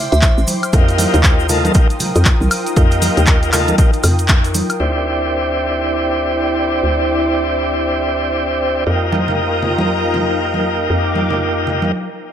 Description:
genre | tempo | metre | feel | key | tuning
deep house | 118 BPM | 4/4 | swing 60% on 16ths | D phrygian | A4 = 440 Hz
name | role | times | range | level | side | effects
warm analog pad | sustained chords | 0.0-11.9 s | E4 to Eb6 | -25 LUFS | left 1 dB | chorus, sidechain pumping
ethereal airy pad | texture | 0.0-11.9 s | Eb4 to G5 | -25 LUFS | right 1 dB | ensemble chorus, built-in reverb, sidechain pumping
string machine, violins | texture | 0.0-4.8, 8.9-11.9 s | Bb5 to C6 | -33 LUFS | left 2 dB | ensemble chorus
glassy synth bell | melody | 0.1-0.8 s | E5 | -24 LUFS | right 3 dB | chorus, tremolo, tape echo
hollow knocking FM bass | bass | 0.1-11.9 s | A1 to F2 | -19 LUFS | equal | tube saturation, sidechain pumping
punchy analog drum machine | drums | 0.1-4.8 s | handclaps, hi-hat, woodblock | -19 LUFS | equal | none
tube shaker | percussion | 0.1-4.8 s | none | -27 LUFS | right 1 dB | none
electronic kick drum | drums | 0.2-4.4 s | none | -13 LUFS | equal | none
congas | percussion | 0.5-4.7, 9.1-11.9 s | none | -22 LUFS | right 1 dB | none
tonewheel organ | stabs | 0.7-11.9 s | Bb3 to A4 | -18 LUFS | equal | fast rotary speaker, low-pass filter, tape echo
room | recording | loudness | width
moderate digital room reverb, RT60 1.1 s, digital ambience | none | -13 LUFS | side -9 dB against mid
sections
0.0-4.8 A section; 4.8-12.3 B section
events
band accent 4.3; break 11.9-12.3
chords
0.0 D9sus4; 0.7 F9sus4; 4.8 D9sus4; 8.9 F9sus4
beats
0.22 | 0.73 1.24 1.75 2.26 | 2.77 3.27 3.78 4.29 | 4.80 5.31 5.82 6.33 | 6.83 7.34 7.85 8.36 | 8.87 9.38 9.88 10.39 | 10.90 11.41 11.92

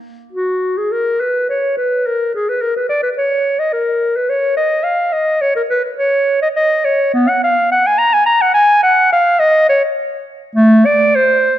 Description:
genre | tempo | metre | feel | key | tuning
classical, baroque-style fantasia for unaccompanied clarinet | 106 BPM | 3/4 | rubato | Eb minor | A4 = 440 Hz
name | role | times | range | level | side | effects
warm clarinet | solo | 0.3-11.6 s | A3 to Bb5 | -12 LUFS | equal | none
room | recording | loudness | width
moderate concert hall reverb, RT60 2.0 s | dark, warm production | -12 LUFS | side -12 dB against mid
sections
0.3-11.6 A section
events
none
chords
none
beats
| 0.34 0.91 1.49 | 2.06 2.62 3.17 | 3.73 4.29 4.86 | 5.42 5.98 6.55 | 7.13 7.71 8.27 | 8.84 9.41 9.98 | 10.56 11.14

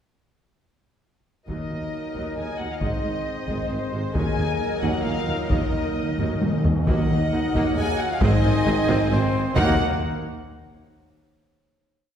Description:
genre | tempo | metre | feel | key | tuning
cinematic, epic orchestral film score | 134 BPM | 3/4 | straight | Eb dorian | A4 = 442 Hz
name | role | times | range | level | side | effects
rich symphonic violin section | melody | 1.5-9.8 s | C5 to Ab5 | -32 LUFS | left 2 dB | none
rich symphonic violin section | second line | 1.5-9.8 s | Bb4 to Ab5 | -34 LUFS | left 2 dB | none
bright symphonic viola section | accompaniment | 1.5-9.8 s | C3 to Eb4 | -34 LUFS | right 1 dB | none
dark French horn section | sustained chords | 1.5-9.7 s | Gb3 to Ab4 | -29 LUFS | left 1 dB | none
warm trombone section | sustained chords | 1.5-9.7 s | Eb3 to C4 | -35 LUFS | right 4 dB | none
warm woodwind section | sustained chords | 1.5-9.7 s | Gb3 to Eb5 | -34 LUFS | equal | none
mellow tuba | bass | 1.5-9.8 s | Ab1 to Eb2 | -30 LUFS | right 2 dB | none
rich symphonic double bass section | bass | 1.5-9.8 s | Ab1 to Eb2 | -29 LUFS | right 1 dB | none
warm symphonic cello section | bass | 1.5-9.8 s | Eb2 to Ab2 | -31 LUFS | right 1 dB | none
taiko ensemble | drums | 1.5-10.4 s | none | -27 LUFS | equal | none
timpani | percussion | 1.5-2.1, 4.2-7.5, 9.6-9.8 s | Eb3 | -28 LUFS | equal | none
dark trumpet section | stabs | 6.9-9.7 s | C5 to Ab5 | -30 LUFS | equal | none
room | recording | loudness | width
wet scoring stage reverb, RT60 1.6 s | heard from further back in the room | -21 LUFS | side -8 dB against mid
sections
1.5-6.9 theme; 6.9-9.6 outro; 9.6-10.9 final chord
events
timpani fill 5.5-6.9; drum fill 6.2-6.9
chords
1.5 Ebm; 2.8 Ab; 4.2 Ebm; 8.2 Ab; 9.6 Ebm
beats
| 1.48 1.93 2.38 | 2.82 3.26 3.71 | 4.16 4.60 5.05 | 5.50 5.96 6.42 | 6.87 7.32 7.77 | 8.21 8.66 9.11 | 9.56 10.01

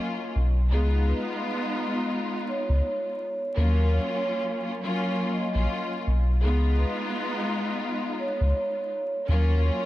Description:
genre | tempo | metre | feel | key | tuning
hip hop, boom-bap hip-hop | 84 BPM | 4/4 | swing 54% on 16ths | unclear | A4 = 440 Hz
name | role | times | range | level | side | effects
vibraphone with soft mallets | melody | 0.0-9.9 s | Ab4 to Eb5 | -32 LUFS | equal | high-pass filter, low-pass filter, diffuse ambient delay
clear studio string section | accompaniment | 0.0-9.9 s | Gb3 to F4 | -28 LUFS | left 1 dB | cassette tape, high-pass filter, low-pass filter
warm sub bass | bass | 0.4-9.7 s | Bb1 to Eb2 | -21 LUFS | equal | none
room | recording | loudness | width
moderate plate reverb, RT60 3.9 s | dreamy mix soaked in reverb, vinyl crackle | -24 LUFS | side -15 dB against mid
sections
0.0-9.9 A section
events
none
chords
0.0 Ebm7; 0.7 Db7; 3.6 Ebm7; 6.4 Db7; 9.3 Ebm7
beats
| 0.71 1.42 2.14 2.85 | 3.56 4.28 4.99 5.71 | 6.42 7.14 7.85 8.56 | 9.28

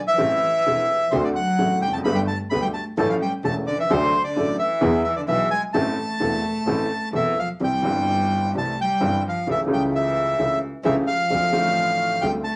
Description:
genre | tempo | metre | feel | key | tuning
tango | 130 BPM | 4/4 | rubato | A minor, C major from 7.6 s | A4 = 440 Hz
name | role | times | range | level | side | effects
bandoneon | melody | 0.1-12.6 s | C5 to B5 | -25 LUFS | equal | none
rich cello | second line | 0.1-12.6 s | C3 to B3 | -32 LUFS | equal | none
warm upright piano | accompaniment | 0.2-12.4 s | E1 to A4 | -27 LUFS | equal | none
warm double bass | bass | 0.2-12.4 s | E1 to E2 | -33 LUFS | equal | none
room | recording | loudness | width
wet club reverb, RT60 0.5 s | none | -22 LUFS | mono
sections
0.0-7.6 A section; 7.6-12.6 B section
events
none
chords
0.2 Am7; 1.1 D7; 2.1 Gadd9; 3.0 A; 3.9 D; 4.8 E; 5.7 Am; 7.6 C; 9.5 A7/C#; 11.3 Dm7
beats
| 0.20 0.67 1.13 1.60 | 2.06 2.52 2.98 3.45 | 3.91 4.37 4.82 5.28 | 5.74 6.20 6.66 7.13 | 7.60 8.07 8.54 9.01 | 9.47 9.93 10.39 10.85 | 11.30 11.76 12.22

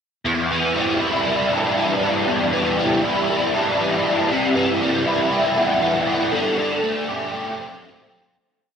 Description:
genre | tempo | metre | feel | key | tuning
rock | 118 BPM | 4/4 | straight | E minor | A4 = 442 Hz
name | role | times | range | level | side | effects
biting overdriven guitar | solo | 0.3-8.3 s | E2 to G4 | -18 LUFS | equal | ensemble chorus, analog delay
room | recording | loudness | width
wet lush hall reverb, RT60 2.1 s | dreamy mix soaked in reverb | -18 LUFS | side -7 dB against mid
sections
0.2-8.3 verse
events
fade-out 6.3-8.3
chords
0.2 Em7; 4.3 Cmaj7; 6.3 D7sus4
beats
| 0.24 0.75 1.25 1.76 | 2.27 2.77 3.28 3.79 | 4.30 4.81 5.31 5.82 | 6.33 6.83 7.34 7.84

